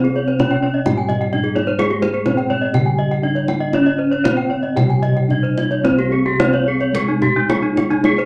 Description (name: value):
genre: Balinese gamelan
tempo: 109-129 BPM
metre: 4/4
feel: straight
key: C pelog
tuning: A4 = 436 Hz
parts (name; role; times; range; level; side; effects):
- gamelan-type bronze metallophone; melody; 0.0-8.3 s; Ab3 to G4; -24 LUFS; equal; none
- gamelan-type bronze metallophone; accompaniment; 0.0-5.8 s; C3 to Ab3; -30 LUFS; equal; none
- gamelan-type bronze metallophone; arpeggios; 0.0-8.2 s; Eb4 to G5; -25 LUFS; equal; none
- gamelan-type bronze metallophone; arpeggios; 0.0-8.3 s; Eb4 to Ab5; -25 LUFS; equal; none
- gamelan-type bossed gongs; bass; 0.0-8.3 s; C2 to Ab4; -24 LUFS; equal; none
- kendang; percussion; 0.0-8.3 s; none; -24 LUFS; equal; none
room: wet club reverb, RT60 0.7 s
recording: none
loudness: -17 LUFS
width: mono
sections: 0.0-5.8 A section; 5.8-8.3 B section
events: none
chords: none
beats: 0.39 0.86 1.32 | 1.79 2.26 2.74 3.23 | 3.73 4.24 4.76 5.30 | 5.84 6.39 6.94 7.49 | 8.04